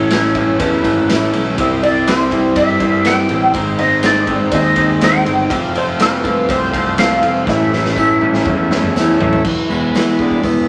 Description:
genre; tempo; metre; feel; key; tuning
psychedelic rock; 122 BPM; 4/4; straight; unclear; A4 = 437 Hz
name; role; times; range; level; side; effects
lightly driven lead guitar; melody; 0.0-8.9 s; B4 to G5; -20 LUFS; equal; wah
overdriven combo organ; sustained chords; 0.0-10.7 s; G#3 to F5; -25 LUFS; equal; none
electric guitar through a small old amp; riff; 0.0-10.7 s; G#2 to F4; -18 LUFS; equal; none
fuzz picked electric bass; bass; 0.0-10.7 s; E1 to G2; -24 LUFS; equal; overdrive
raw garage drum kit; drums; 0.1-10.6 s; crash cymbal, hi-hat, kick drum, ride cymbal, snare drum, toms; -22 LUFS; equal; none
tambourine; percussion; 0.1-10.6 s; none; -42 LUFS; equal; none
room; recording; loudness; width
moderate studio reverb, RT60 0.8 s; none; -15 LUFS; mono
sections
0.0-9.4 A section; 9.4-10.7 B section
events
drum fill 7.5-9.4; transistor combo organ solo 9.4-10.7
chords
0.0 A; 1.6 C; 3.5 G#; 5.5 F; 7.5 A; 9.4 E

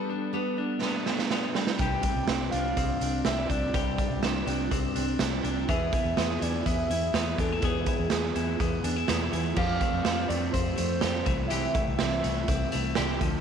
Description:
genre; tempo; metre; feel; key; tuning
jangly indie pop; 124 BPM; 4/4; straight; C major; A4 = 441 Hz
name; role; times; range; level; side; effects
picked steel-string acoustic guitar; accompaniment; 0.0-13.4 s; E2 to A4; -34 LUFS; right 9 dB; none
clean electric guitar; arpeggios; 0.0-13.4 s; E3 to A4; -32 LUFS; left 12 dB; none
raw garage drum kit; drums; 0.8-13.3 s; crash cymbal, hi-hat, kick drum, snare drum; -29 LUFS; right 3 dB; none
warbly nostalgic lead; melody; 1.8-12.7 s; G#4 to G5; -33 LUFS; equal; chorus, tape echo
vintage muted fingered electric bass; bass; 1.8-13.4 s; C2 to F2; -32 LUFS; left 1 dB; none
room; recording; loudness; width
light reverb, small room ambience; 1960s-style stereo with parts hard left and right; -25 LUFS; side -7 dB against mid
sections
0.0-9.6 A section; 9.6-13.4 B section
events
drum fill 0.8-1.8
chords
0.0 Gadd9; 1.6 Csus2; 5.7 E; 9.6 Fadd9; 11.3 C6

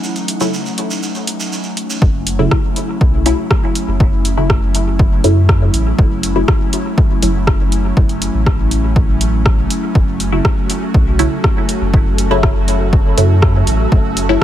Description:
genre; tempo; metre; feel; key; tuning
dub techno; 121 BPM; 4/4; straight; F# dorian; A4 = 439 Hz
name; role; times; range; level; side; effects
airy breathy pad; sustained chords; 0.0-14.4 s; F#3 to F#4; -21 LUFS; equal; chorus, sidechain pumping
shekere; percussion; 0.0-2.0 s; none; -25 LUFS; right 4 dB; none
wind-like tuned noise texture; texture; 0.0-2.0, 10.7-14.4 s; E3 to F#5; -27 LUFS; left 1 dB; built-in reverb, sidechain pumping
deep house drum kit; drums; 0.2-14.4 s; hi-hat, rim click; -21 LUFS; equal; dub echo
filtered dub chord stab; stabs; 0.4-14.4 s; C#3 to E4; -20 LUFS; left 1 dB; phaser, sidechain pumping, dub echo
warm sub bass; bass; 2.0-14.4 s; F#1 to F#2; -16 LUFS; equal; sidechain pumping
electronic kick drum; drums; 2.0-14.4 s; none; -14 LUFS; equal; overdrive
room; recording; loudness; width
digital ambience; none; -12 LUFS; side -12 dB against mid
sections
0.0-2.0 A section; 2.0-14.4 B section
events
none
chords
0.0 F#m7

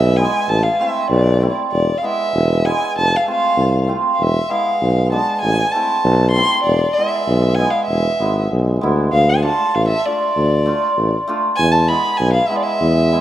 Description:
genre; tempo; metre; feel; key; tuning
klezmer; 97 BPM; 2/4; straight; E phrygian dominant; A4 = 439 Hz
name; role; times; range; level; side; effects
dark violin; melody; 0.0-13.2 s; D5 to C6; -18 LUFS; equal; none
hammered dulcimer; accompaniment; 0.0-13.2 s; G#3 to F4; -21 LUFS; right 2 dB; none
warm tuba; bass; 0.0-13.2 s; E1 to E2; -16 LUFS; equal; none
room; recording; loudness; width
moderate plate reverb, RT60 2.9 s; rough home demo mix; -14 LUFS; side -12 dB against mid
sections
0.0-9.1 A section; 9.1-13.2 B section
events
none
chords
0.5 Am; 1.7 E; 3.0 F; 4.2 E; 5.4 Am; 6.7 E; 9.1 Dm; 11.6 E

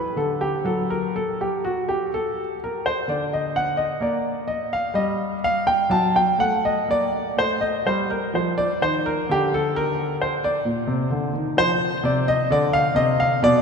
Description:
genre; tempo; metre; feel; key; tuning
classical, baroque-style suite movement for grand piano; 63 BPM; 4/4; uneven beats, rubato; G minor; A4 = 439 Hz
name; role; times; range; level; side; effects
warm grand piano; solo; 0.0-13.6 s; Bb2 to A5; -20 LUFS; equal; none
room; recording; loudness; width
wet cathedral reverb, RT60 4.5 s; recorded in a church or concert hall; -20 LUFS; side -5 dB against mid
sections
0.0-13.6 A section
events
none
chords
0.2 D; 4.0 Gm/Bb; 5.9 F#m6; 7.8 Gm; 11.6 Cmadd9

